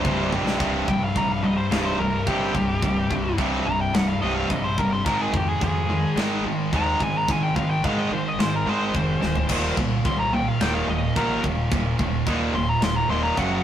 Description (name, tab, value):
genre	heavy metal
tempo	108 BPM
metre	4/4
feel	straight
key	C minor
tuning	A4 = 439 Hz
part	nasal lead guitar with a parked wah	melody	0.0-13.6 s	G4 to C6	-27 LUFS	left 1 dB	overdrive, digital delay
part	distorted electric guitar	riff	0.0-13.6 s	C2 to Ab3	-26 LUFS	right 4 dB	overdrive
part	heavy high-gain guitar	riff	0.0-13.6 s	C2 to Ab3	-28 LUFS	left 5 dB	distortion
part	tight distorted guitar	riff	0.0-13.6 s	C2 to Ab3	-31 LUFS	equal	distortion
part	growling picked electric bass	bass	0.0-13.6 s	C1 to Ab2	-30 LUFS	equal	overdrive
part	tight metal drum kit	drums	0.0-13.5 s	china cymbal, crash cymbal, kick drum, snare drum, splash cymbal, toms	-28 LUFS	equal	none
room	light reverb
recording	rough rehearsal-room recording, warm saturation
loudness	-20 LUFS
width	side -10 dB against mid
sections	0.6-13.6 A section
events	drum fill 0.0-0.6, 9.2; lead electric guitar solo 0.6-13.6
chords	0.0 C5; 5.1 Ab; 9.5 Eb5